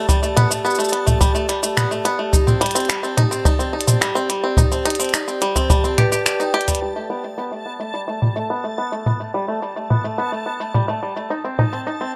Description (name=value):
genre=folktronica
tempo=107 BPM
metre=4/4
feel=straight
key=G major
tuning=A4 = 440 Hz
part: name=vibraphone with soft mallets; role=second line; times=0.0-6.8 s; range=G4 to G5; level=-27 LUFS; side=equal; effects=digital delay
part: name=bluegrass banjo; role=arpeggios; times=0.0-12.1 s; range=G3 to G4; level=-25 LUFS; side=equal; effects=low-pass filter, tape echo
part: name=backwards swelling texture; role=texture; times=0.0-12.2 s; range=A5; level=-36 LUFS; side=equal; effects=built-in reverb
part: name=kick drum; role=drums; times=0.1-5.8 s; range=none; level=-20 LUFS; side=equal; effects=none
part: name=minimal click drum kit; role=drums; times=0.1-12.1 s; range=finger snaps, hi-hat, shaker, toms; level=-22 LUFS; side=equal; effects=low-pass filter on snare, low-pass filter on perc, low-pass filter on toms, low-pass filter on hats, low-pass filter on room
room=light reverb, small room ambience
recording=none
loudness=-20 LUFS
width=mono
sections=0.0-6.8 A section; 6.8-12.2 B section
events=none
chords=0.0 Gadd9; 2.3 Cm; 6.8 Gadd9; 11.3 Cm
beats=| 0.09 0.65 1.21 1.77 | 2.33 2.90 3.46 4.02 | 4.58 5.14 5.70 6.26 | 6.82 7.38 7.94 8.50 | 9.06 9.62 10.19 10.74 | 11.31 11.87